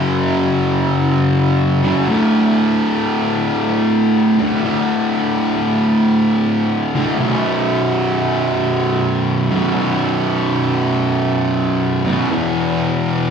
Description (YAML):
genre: metal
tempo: 94 BPM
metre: 4/4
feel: swing 64% on 8ths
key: B minor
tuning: A4 = 440 Hz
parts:
  - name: fuzz guitar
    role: solo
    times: 0.0-13.3 s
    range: B1 to F#3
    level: -14 LUFS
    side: equal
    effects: distortion, slapback echo
room: moderate club reverb, RT60 0.8 s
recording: live gig heard through the venue's PA, club reverb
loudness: -14 LUFS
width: side -7 dB against mid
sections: 0.0-13.3 A section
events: none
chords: 0.0 F#5; 2.1 D5; 7.2 B5; 12.3 E5